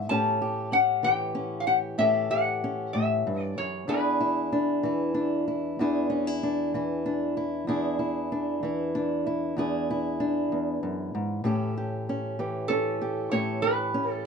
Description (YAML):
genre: acoustic country blues, solo or duo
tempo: 64 BPM (dotted quarters)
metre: 12/8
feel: straight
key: E mixolydian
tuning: A4 = 439 Hz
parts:
  - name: metal-body resonator slide guitar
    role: melody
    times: 0.0-5.1, 12.7-14.2 s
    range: A4 to A5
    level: -26 LUFS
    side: left 2 dB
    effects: none
  - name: fingerpicked old ladder-braced acoustic guitar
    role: accompaniment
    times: 0.0-14.3 s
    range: E2 to A4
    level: -27 LUFS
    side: equal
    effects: none
room: moderate small room reverb, RT60 0.5 s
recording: dark, warm production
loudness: -25 LUFS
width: side -6 dB against mid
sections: 0.0-14.3 A section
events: none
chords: 0.1 A7; 3.9 E7; 11.4 A7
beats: | 0.10 1.04 1.99 2.94 | 3.88 4.83 5.77 6.72 | 7.66 8.60 9.54 10.48 | 11.43 12.37 13.31 14.25